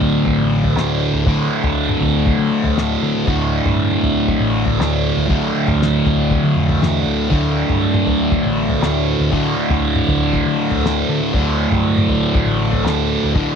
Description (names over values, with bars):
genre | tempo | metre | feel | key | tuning
psychedelic rock | 119 BPM | 4/4 | straight | unclear | A4 = 440 Hz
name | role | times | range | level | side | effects
fuzz guitar | riff | 0.0-13.6 s | D2 to D3 | -16 LUFS | equal | distortion, phaser
hollow-body short-scale picked electric bass | bass | 0.0-13.6 s | A1 to D3 | -21 LUFS | equal | none
cloth-damped thuddy drum kit | drums | 0.0-13.5 s | kick drum, snare drum, toms | -21 LUFS | left 1 dB | none
room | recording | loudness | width
studio reverb | 1960s-style stereo | -14 LUFS | side -7 dB against mid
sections
0.0-13.6 A section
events
none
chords
0.0 D5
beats
0.26 0.76 | 1.26 1.77 2.27 2.78 | 3.28 3.78 4.29 4.79 | 5.30 5.80 6.30 6.81 | 7.31 7.82 8.32 8.82 | 9.33 9.83 10.34 10.84 | 11.34 11.85 12.35 12.86 | 13.36